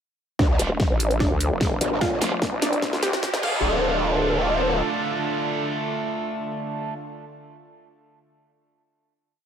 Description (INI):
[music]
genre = heavy wobble dubstep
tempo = 148 BPM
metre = 4/4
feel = half-time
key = D minor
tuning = A4 = 440 Hz
[part]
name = wide unison pluck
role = melody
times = 0.4-6.9 s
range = D4 to G5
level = -29 LUFS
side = right 1 dB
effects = tape echo
[part]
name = supersaw pad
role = sustained chords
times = 0.4-6.9 s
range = D3 to A5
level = -30 LUFS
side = right 1 dB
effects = sidechain pumping, low-pass filter
[part]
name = growl bass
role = bass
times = 0.4-4.8 s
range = D1 to D2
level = -23 LUFS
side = equal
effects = chorus, overdrive
[part]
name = dubstep drum kit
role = drums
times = 0.4-3.5 s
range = crash cymbal, hi-hat, snare drum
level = -28 LUFS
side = equal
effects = high-pass filter on snare, high-pass filter on hats, high-pass filter on cymbals
[part]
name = electronic kick drum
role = drums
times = 0.4-3.5 s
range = none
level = -25 LUFS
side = equal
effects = none
[part]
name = riser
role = sound effects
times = 1.8-3.6 s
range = none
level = -31 LUFS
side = equal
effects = none
[part]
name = distorted electric guitar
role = stabs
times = 0.6-6.9 s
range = A3 to F4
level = -29 LUFS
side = right 2 dB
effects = overdrive, tape echo
[part]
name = vowel-sweep wobble bass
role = bass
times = 0.6-3.1 s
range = Eb1 to D2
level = -24 LUFS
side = equal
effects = chorus, overdrive
[sound]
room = light reverb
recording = high-pass filter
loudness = -21 LUFS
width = side -8 dB against mid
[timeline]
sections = 0.4-3.6 build; 3.6-6.9 final hit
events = build-up 0.4-3.6; drum fill 0.4-3.6; filter sweep on supersaw synth 0.4-3.6; filter sweep on synth pluck 0.4-3.6; filter sweep 0.4-3.6; riser 1.8-3.6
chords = 0.4 Dm